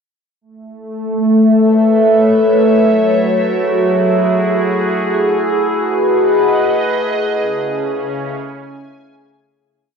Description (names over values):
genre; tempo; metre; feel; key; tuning
ambient; free time; none; none; A lydian; A4 = 440 Hz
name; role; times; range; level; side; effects
evolving wavetable pad; sustained chords; 0.9-9.6 s; C#3 to G#5; -12 LUFS; equal; chorus, built-in reverb, cassette tape
overtone-sweeping drone; drone; 1.6-9.7 s; A3 to E4; -26 LUFS; equal; chorus, built-in reverb, cassette tape
room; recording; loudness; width
wet spring reverb, RT60 2.5 s; home recording on cassette; -12 LUFS; side -6 dB against mid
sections
0.4-9.6 A section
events
fade-in on synth drone 0.4-9.6; filter sweep on ambient pad 0.4-9.6; fade-out 6.5-9.6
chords
0.4 Aadd9; 2.7 F#m7; 5.0 G#m7; 7.3 C#5